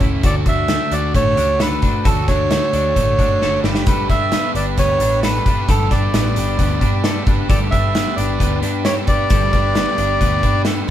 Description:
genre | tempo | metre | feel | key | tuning
jangly indie pop | 132 BPM | 4/4 | straight | unclear | A4 = 440 Hz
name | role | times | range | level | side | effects
crunchy overdriven guitar | accompaniment | 0.0-10.9 s | D3 to B4 | -24 LUFS | right 2 dB | none
twelve-string electric guitar | arpeggios | 0.0-10.9 s | F#3 to A4 | -25 LUFS | left 3 dB | none
vintage muted picked electric bass | bass | 0.0-10.8 s | F#1 to G2 | -23 LUFS | equal | none
loose indie drum kit | drums | 0.0-10.9 s | hi-hat, kick drum, snare drum | -18 LUFS | equal | none
melodica | melody | 0.3-10.6 s | A4 to E5 | -20 LUFS | right 1 dB | none
room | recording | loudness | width
moderate small room ambience, RT60 0.5 s | band playing live in one room | -14 LUFS | side -11 dB against mid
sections
0.0-10.9 A section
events
drum fill 3.4-3.9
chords
0.2 D; 3.6 Gadd9

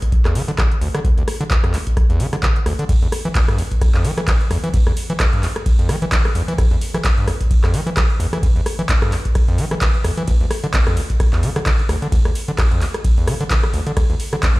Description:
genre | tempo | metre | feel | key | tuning
acid house | 130 BPM | 4/4 | swing 56% on 16ths | E phrygian | A4 = 440 Hz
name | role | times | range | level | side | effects
electro analog drum machine | drums | 0.0-14.6 s | handclaps, hi-hat, ride cymbal, rim click | -24 LUFS | equal | none
electronic kick drum | drums | 0.0-14.5 s | none | -17 LUFS | equal | none
overdriven acid bass | riff | 0.3-14.6 s | C2 to E3 | -21 LUFS | equal | sidechain pumping, digital delay
room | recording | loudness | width
light reverb | played on a big sound system in a bare room, large studio reverb | -15 LUFS | side -20 dB against mid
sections
0.0-14.6 A section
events
none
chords
none

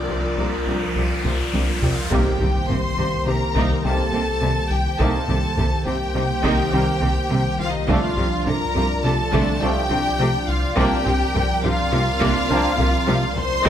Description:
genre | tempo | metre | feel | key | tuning
cinematic, hybrid orchestral and electronic film score | 104 BPM | 5/4 | straight | C dorian | A4 = 439 Hz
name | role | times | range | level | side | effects
clear symphonic violin section | melody | 0.0-13.7 s | D5 to C6 | -27 LUFS | left 3 dB | none
warm symphonic viola section | accompaniment | 0.0-13.7 s | D3 to Bb4 | -28 LUFS | right 2 dB | none
hollow soft pad | sustained chords | 0.0-13.7 s | Eb3 to D5 | -28 LUFS | right 1 dB | chorus
mellow French horn section | sustained chords | 0.0-13.7 s | C4 to G4 | -30 LUFS | left 3 dB | none
warm trombone section | sustained chords | 0.0-13.7 s | Eb3 to Bb3 | -32 LUFS | right 4 dB | none
pure sine sub bass | bass | 0.0-13.7 s | C2 | -28 LUFS | equal | none
riser and impact | sound effects | 0.0-5.0 s | none | -29 LUFS | equal | none
warm symphonic violin section | second line | 0.1-13.7 s | Eb4 to C5 | -27 LUFS | left 1 dB | none
soft round pluck | arpeggios | 0.1-13.7 s | C3 to Bb4 | -32 LUFS | right 2 dB | none
rubbery square bass | riff | 0.1-13.7 s | C2 to C3 | -26 LUFS | left 1 dB | none
clear symphonic cello section | bass | 0.1-13.7 s | C3 | -28 LUFS | right 1 dB | none
warm symphonic double bass section | bass | 0.1-13.7 s | C2 | -29 LUFS | right 2 dB | none
taiko ensemble | drums | 1.2-13.7 s | none | -28 LUFS | equal | none
room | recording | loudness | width
moderate scoring stage reverb, RT60 1.6 s | none | -18 LUFS | side -10 dB against mid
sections
0.0-2.1 A section; 2.1-13.7 B section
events
riser 0.0-2.1; drum fill 1.3-2.1, 12.8-13.7; impact 2.1-5.0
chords
0.0 Bbadd9/C; 2.1 Cm7; 7.9 Dm/C; 10.8 Bbadd9/C

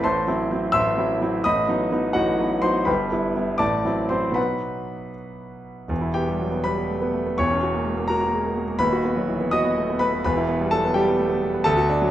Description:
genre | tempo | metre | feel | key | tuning
classical, virtuoso piano study | 84 BPM (dotted quarters) | 6/8 | rubato | E minor | A4 = 440 Hz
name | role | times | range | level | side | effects
warm grand piano | solo | 0.0-12.1 s | D#1 to E6 | -20 LUFS | equal | none
room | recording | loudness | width
wet recital hall reverb, RT60 1.4 s | none | -20 LUFS | side -12 dB against mid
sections
0.0-5.9 A section; 5.9-12.1 B section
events
none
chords
0.0 F#m7b5/A; 1.5 B7/A; 2.9 Em/G; 3.6 F#m7b5/A; 4.4 B; 5.9 Em; 7.4 F#7/E; 8.8 B/D#; 10.2 Em

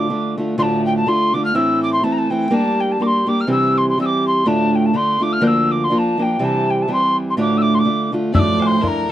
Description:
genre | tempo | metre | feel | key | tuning
celtic folk, Celtic polka | 124 BPM | 2/4 | swing 56% on 8ths | D minor | A4 = 440 Hz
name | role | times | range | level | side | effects
mellow wooden whistle | melody | 0.0-9.1 s | G5 to G6 | -19 LUFS | equal | none
fingerpicked steel-string acoustic guitar | accompaniment | 0.0-9.1 s | D2 to G4 | -17 LUFS | equal | none
clear fiddle | second line | 8.3-9.1 s | Bb4 to D5 | -26 LUFS | left 7 dB | none
bodhran | percussion | 8.3-9.0 s | none | -20 LUFS | left 1 dB | none
room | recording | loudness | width
light reverb | dry, close 1970s-style studio recording, faint mains hum | -15 LUFS | side -12 dB against mid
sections
0.6-8.3 A section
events
none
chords
0.0 Dm; 1.6 Am; 2.5 Gm; 3.5 C; 4.5 Dm; 5.4 Bb/D; 6.4 C; 7.4 Dm; 8.3 Dmadd9

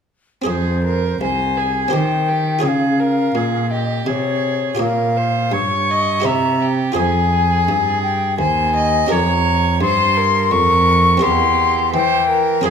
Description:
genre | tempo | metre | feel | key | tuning
classical, baroque-style sonata movement with continuo | 84 BPM | 3/4 | straight | F minor | A4 = 440 Hz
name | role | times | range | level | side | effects
buff-stop harpsichord | accompaniment | 0.4-12.7 s | C2 to Db5 | -24 LUFS | equal | none
bright wooden flute | melody | 0.5-12.6 s | C5 to Db6 | -18 LUFS | left 4 dB | none
rich violin | second line | 0.5-12.7 s | G4 to E5 | -22 LUFS | right 7 dB | none
warm cello | bass | 0.5-12.7 s | C2 to E3 | -20 LUFS | right 2 dB | none
room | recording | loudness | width
wet recital hall reverb, RT60 1.5 s | minimal, uncompressed stereo recording | -14 LUFS | side -7 dB against mid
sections
0.5-12.7 A section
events
none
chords
0.5 Fm; 1.9 Cm/Eb; 2.6 Db; 4.8 Gm7b5/Bb; 6.3 C7; 7.0 Fm; 9.1 Gm7b5/F; 11.2 C7/E

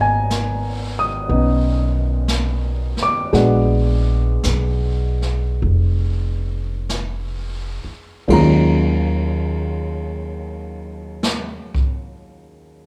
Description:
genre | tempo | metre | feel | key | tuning
jazz ballad | 40-63 BPM | 4/4 | swing 69% on 8ths | Eb minor | A4 = 440 Hz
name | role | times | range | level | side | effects
dark baby grand piano | accompaniment | 0.0-12.9 s | Eb2 to Eb6 | -22 LUFS | equal | none
upright bass | bass | 0.0-11.6 s | F1 to Eb2 | -22 LUFS | equal | none
jazz brush drum kit | drums | 0.3-12.2 s | brushed snare drum, hi-hat, kick drum, ride cymbal, snare drum | -29 LUFS | equal | none
room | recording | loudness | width
light reverb | band playing live in one room | -19 LUFS | mono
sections
0.0-8.3 A section; 8.3-12.9 B section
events
slowing down 0.0-8.3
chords
0.0 Abm7; 3.3 Bb7b9b13; 8.3 Ebm11

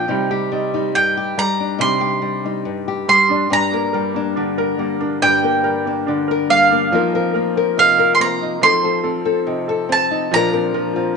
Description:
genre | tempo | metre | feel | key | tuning
acoustic folk duo or small band | 70 BPM | 4/4 | straight | unclear | A4 = 441 Hz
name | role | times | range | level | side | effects
mandolin | melody | 0.0-11.2 s | F5 to C6 | -16 LUFS | right 3 dB | none
nylon-string guitar | accompaniment | 0.0-11.2 s | G2 to Bb4 | -20 LUFS | left 10 dB | none
bright upright piano | arpeggios | 0.0-11.2 s | F3 to Bb4 | -24 LUFS | right 9 dB | none
room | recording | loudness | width
moderate echo chamber reverb, RT60 1.5 s, small room ambience | 1960s-style stereo with parts hard left and right, nothing above 10.6 kHz | -15 LUFS | side -5 dB against mid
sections
0.1-11.2 A section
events
none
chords
0.1 Cmadd9; 3.5 Gm; 6.9 F7sus4; 8.6 F7; 10.3 Bbadd9

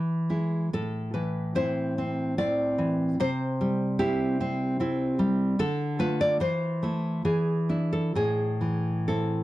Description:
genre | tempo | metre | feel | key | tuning
romantic piece for solo classical guitar | 64-78 BPM | 3/4 | rubato | A minor | A4 = 440 Hz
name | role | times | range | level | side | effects
nylon-string guitar | solo | 0.0-9.4 s | A2 to D5 | -24 LUFS | equal | slapback echo
room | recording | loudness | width
little or no reverb | dry, close 1970s-style studio recording | -24 LUFS | side -16 dB against mid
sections
0.0-9.4 A section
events
none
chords
0.0 E; 0.7 Am; 3.2 C; 5.6 Dm; 6.4 Am/E; 7.3 E7; 8.2 Am

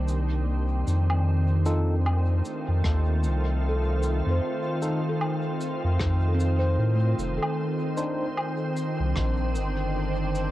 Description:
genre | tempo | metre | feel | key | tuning
ambient dub | 76 BPM | 4/4 | swing 59% on 16ths | unclear | A4 = 439 Hz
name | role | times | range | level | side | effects
soft additive organ-like pad | sustained chords | 0.0-10.5 s | Eb3 to C5 | -29 LUFS | equal | ensemble chorus, built-in reverb, cassette tape
handpan | arpeggios | 0.0-9.1 s | A3 to C5 | -35 LUFS | equal | cassette tape, dub echo
warm sub bass | bass | 0.0-10.5 s | F1 to A2 | -24 LUFS | equal | none
cabasa, woodblock and rim click | drums | 0.1-10.5 s | none | -35 LUFS | equal | cassette tape, dub echo
tine electric piano | stabs | 1.7-8.3 s | D4 to C5 | -36 LUFS | left 1 dB | none
electronic kick drum | drums | 2.8-9.3 s | none | -32 LUFS | equal | overdrive, cassette tape
room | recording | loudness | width
small room ambience | home recording on cassette | -23 LUFS | side -15 dB against mid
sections
0.0-10.5 A section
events
none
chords
0.0 Cmadd9; 1.3 F7; 7.6 Cmadd9

